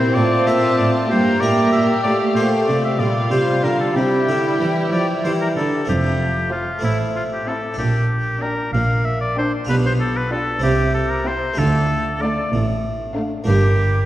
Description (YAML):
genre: classical, baroque-style concerto movement with solo episodes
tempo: 63 BPM (dotted quarters)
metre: 6/8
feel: straight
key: F major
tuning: A4 = 439 Hz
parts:
  - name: clear oboe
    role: melody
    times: 0.0-14.1 s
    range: E4 to F5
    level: -23 LUFS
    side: left 1 dB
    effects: none
  - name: rich chamber violin section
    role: melody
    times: 0.0-13.4 s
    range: F5 to Bb5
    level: -32 LUFS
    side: left 4 dB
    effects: none
  - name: rich chamber violin section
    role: second line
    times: 0.0-13.4 s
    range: D4 to G4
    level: -25 LUFS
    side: left 1 dB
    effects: none
  - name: harpsichord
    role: accompaniment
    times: 0.0-14.1 s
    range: F2 to C5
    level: -24 LUFS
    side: equal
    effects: none
  - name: rich symphonic viola section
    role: accompaniment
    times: 0.0-13.4 s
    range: F3 to D4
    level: -23 LUFS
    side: right 1 dB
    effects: none
  - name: dark studio cello section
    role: bass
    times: 0.0-14.1 s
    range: F2 to F3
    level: -23 LUFS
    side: right 1 dB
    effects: none
  - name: clear chamber double bass section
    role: bass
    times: 5.9-14.1 s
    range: F1 to D2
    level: -22 LUFS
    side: right 1 dB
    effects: none
room: wet concert hall reverb, RT60 1.9 s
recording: worn, warbling old tape, cassette tape, warbly pitch drift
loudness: -16 LUFS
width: side -14 dB against mid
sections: 0.0-5.9 A section; 5.9-14.1 A section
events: none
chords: 0.2 F/A; 1.1 Edim/G; 2.0 F/A; 3.0 Gm7/Bb; 4.0 C; 5.9 F; 6.8 Am; 7.8 Gm/Bb; 9.7 G7/B; 10.6 C; 11.6 Dm; 13.5 Gm